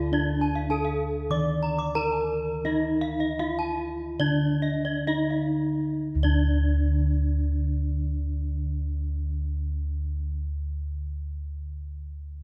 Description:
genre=Balinese gamelan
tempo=59-108 BPM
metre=4/4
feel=straight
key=D pelog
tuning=A4 = 439 Hz
part: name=gamelan-type bronze metallophone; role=melody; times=0.0-10.4 s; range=D4 to D5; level=-31 LUFS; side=equal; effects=none
part: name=gamelan-type bossed gongs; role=bass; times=0.0-10.3 s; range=D2 to Eb4+20c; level=-29 LUFS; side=equal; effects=none
part: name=gamelan-type bronze metallophone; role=arpeggios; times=0.1-10.4 s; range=D5 to D6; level=-35 LUFS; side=equal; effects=none
room=moderate concert hall reverb, RT60 2.0 s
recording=heard from further back in the room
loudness=-27 LUFS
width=mono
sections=0.0-6.0 A section; 6.0-10.1 B section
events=slowing down 0.1-6.0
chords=none

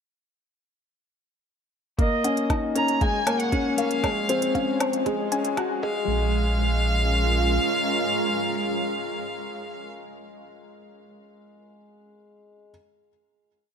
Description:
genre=piano and strings electronica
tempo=117 BPM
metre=4/4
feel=straight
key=Bb minor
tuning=A4 = 440 Hz
part: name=clear violin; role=melody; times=2.0-9.9 s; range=Eb5 to Bb5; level=-28 LUFS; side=right 1 dB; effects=low-pass filter, ping-pong delay
part: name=granular cloud pad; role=sustained chords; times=2.8-9.9 s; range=F3 to F5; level=-30 LUFS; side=right 1 dB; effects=built-in reverb, sidechain pumping
part: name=warbly dusty pluck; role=arpeggios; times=2.0-6.3 s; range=Ab4 to Ab5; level=-33 LUFS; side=equal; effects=chorus, sidechain pumping, ping-pong delay
part: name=warm grand piano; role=riff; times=2.0-12.7 s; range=Ab3 to Gb4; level=-27 LUFS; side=left 2 dB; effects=ping-pong delay
part: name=warm sub bass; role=bass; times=2.0-7.6 s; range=Bb1 to Eb2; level=-23 LUFS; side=equal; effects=sidechain pumping, high-pass filter
part: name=electronic hi-hat and woodblock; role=drums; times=2.0-5.7 s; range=none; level=-30 LUFS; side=left 1 dB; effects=high-pass filter on hats, high-pass filter on perc, high-pass filter on room
part: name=electronic kick drum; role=drums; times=2.0-5.9 s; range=none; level=-26 LUFS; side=equal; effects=none
room=moderate recital hall reverb, RT60 1.3 s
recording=high-pass filter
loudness=-22 LUFS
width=side -7 dB against mid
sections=2.0-6.1 build; 6.1-10.2 final hit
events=build-up 2.0-6.1; filter sweep on synth arpeggio sound 2.0-6.1; filter sweep on violin 2.0-6.1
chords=2.0 Ebm7; 3.0 Bbm7; 4.0 Dbmaj7; 5.1 Gbsus2/Db; 5.8 Bbm7

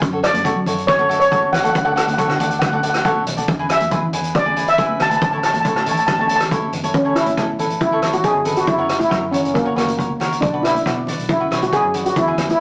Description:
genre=calypso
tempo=138 BPM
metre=4/4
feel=straight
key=A major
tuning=A4 = 441 Hz
part: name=vintage muted fingered electric bass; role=bass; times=0.0-12.5 s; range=F#1 to F#3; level=-31 LUFS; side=equal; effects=none
part: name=street-band drum kit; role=drums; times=0.0-12.6 s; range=hi-hat, kick drum, rim click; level=-25 LUFS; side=equal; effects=none
part: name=cavaquinho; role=accompaniment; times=0.1-12.5 s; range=E4 to E5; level=-26 LUFS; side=equal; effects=none
part: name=steel pan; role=melody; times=0.2-12.6 s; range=A#3 to A5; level=-20 LUFS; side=equal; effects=none
part: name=congas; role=percussion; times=0.3-12.6 s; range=none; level=-32 LUFS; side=equal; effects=none
room=moderate studio reverb, RT60 0.5 s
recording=rough rehearsal-room recording, tube saturation, small speaker sound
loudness=-18 LUFS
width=mono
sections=0.0-6.9 A section; 6.9-12.6 B section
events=none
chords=0.0 F#m; 1.7 D; 3.5 E; 5.2 A; 8.7 F#; 10.4 Bm

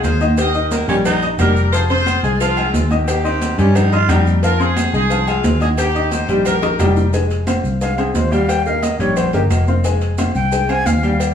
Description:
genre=latin, salsa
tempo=178 BPM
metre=4/4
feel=straight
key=F minor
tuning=A4 = 440 Hz
part: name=bright horn section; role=melody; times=0.0-7.1 s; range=Ab3 to Eb5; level=-21 LUFS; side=right 1 dB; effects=none
part: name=warm upright piano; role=accompaniment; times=0.0-11.3 s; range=F3 to G6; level=-20 LUFS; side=left 2 dB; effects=none
part: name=fingered electric bass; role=bass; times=0.0-11.3 s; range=F1 to G2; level=-17 LUFS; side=equal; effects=none
part: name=congas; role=percussion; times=0.0-11.3 s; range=none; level=-25 LUFS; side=equal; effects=none
part: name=cowbell and bongos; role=percussion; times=0.0-11.3 s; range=none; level=-27 LUFS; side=left 4 dB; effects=none
part: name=maracas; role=percussion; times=0.0-11.3 s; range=none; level=-34 LUFS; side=right 5 dB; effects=none
part: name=timbales and agogo bells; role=percussion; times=0.0-11.3 s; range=none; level=-28 LUFS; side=right 1 dB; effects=none
part: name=claves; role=percussion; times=0.4-11.3 s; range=none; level=-36 LUFS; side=right 2 dB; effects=none
part: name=breathy baritone saxophone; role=second line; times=0.7-4.3 s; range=Bb3 to F4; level=-21 LUFS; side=right 3 dB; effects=none
part: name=breathy bright concert flute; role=melody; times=7.8-11.2 s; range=G4 to Ab5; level=-20 LUFS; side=left 1 dB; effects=none
room=moderate stone room reverb, RT60 1.1 s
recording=band playing live in one room, small room ambience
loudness=-14 LUFS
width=side -8 dB against mid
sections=0.0-7.1 A section; 7.1-11.3 B section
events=drum fill 6.6-7.1; flute solo 7.1-11.3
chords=0.4 Eb; 1.7 Fm; 3.1 Eb; 4.4 Fm; 5.8 Eb; 7.1 Fm; 8.5 Eb; 9.8 Fm

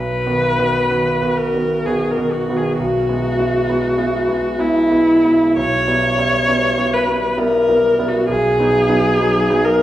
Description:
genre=classical, romantic duo for viola and grand piano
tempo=59-68 BPM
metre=3/4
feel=rubato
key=unclear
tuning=A4 = 440 Hz
part: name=rich viola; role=melody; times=0.0-9.8 s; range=E4 to C#5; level=-16 LUFS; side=left 1 dB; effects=none
part: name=clear concert grand piano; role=accompaniment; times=0.0-9.8 s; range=B1 to F#4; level=-19 LUFS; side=right 1 dB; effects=none
room=wet recital hall reverb, RT60 1.6 s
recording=recorded in a church or concert hall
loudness=-14 LUFS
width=side -13 dB against mid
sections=0.0-9.8 A section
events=none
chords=0.0 B; 2.8 E/B; 5.6 Em/B; 8.3 B

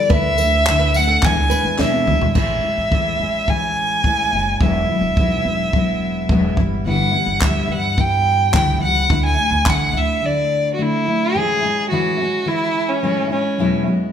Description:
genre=acoustic pop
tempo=107 BPM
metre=4/4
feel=straight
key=A major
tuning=A4 = 440 Hz
part: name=warm violin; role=melody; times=0.0-13.8 s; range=C#4 to G#5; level=-19 LUFS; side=right 1 dB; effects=none
part: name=fingerpicked steel-string acoustic guitar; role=accompaniment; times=0.0-14.1 s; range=E2 to E4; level=-21 LUFS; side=left 1 dB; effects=none
part: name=flamenco guitar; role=arpeggios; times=0.1-1.8 s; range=A4 to B4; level=-27 LUFS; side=right 1 dB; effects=none
part: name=upright bass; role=bass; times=0.1-10.2 s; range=E1 to G2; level=-23 LUFS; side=equal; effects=none
part: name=compact cocktail drum kit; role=drums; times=0.1-9.8 s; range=crash cymbal, handclaps, kick drum, snare drum, tambourine, toms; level=-20 LUFS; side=equal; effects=none
part: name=group handclap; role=percussion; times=0.7-1.9, 7.4-9.8 s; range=none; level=barely audible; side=none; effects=none
room=wet large studio reverb, RT60 1.1 s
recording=band playing live in one room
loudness=-15 LUFS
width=side -8 dB against mid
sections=0.0-2.4 A section; 2.4-11.3 B section; 11.3-14.1 A section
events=drum fill 1.8-2.4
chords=0.1 Dsus2; 1.2 E7; 2.4 Amaj7; 4.6 Eadd9; 6.6 G6; 9.1 Dsus2; 11.3 Amaj7; 13.6 Eadd9

